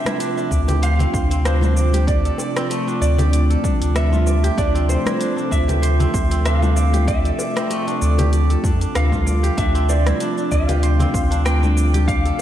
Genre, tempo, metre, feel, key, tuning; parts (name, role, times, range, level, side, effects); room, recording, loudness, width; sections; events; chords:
organic downtempo; 96 BPM; 4/4; swing 55% on 16ths; D minor; A4 = 441 Hz
electric slide guitar; melody; 0.0-12.4 s; C5 to G5; -26 LUFS; equal; tape echo
airy breathy pad; sustained chords; 0.0-12.4 s; C3 to A4; -25 LUFS; right 1 dB; chorus, sidechain pumping
kora; arpeggios; 0.0-12.4 s; A3 to D5; -25 LUFS; right 1 dB; tape echo
deep house drum kit; drums; 0.1-12.4 s; hi-hat, rim click, shaker; -29 LUFS; equal; overdrive, small room ambience
congas and bongos; percussion; 0.1-12.4 s; -29 LUFS; left 2 dB
warm sub bass; bass; 0.5-12.3 s; D2 to F2; -17 LUFS; equal; sidechain pumping
electronic kick drum; drums; 0.5-12.2 s; -22 LUFS; equal; overdrive, small room ambience
moderate lush hall reverb, RT60 2.1 s; dreamy mix soaked in reverb; -16 LUFS; side -11 dB against mid
0.0-12.4 A section
0.0 Dm7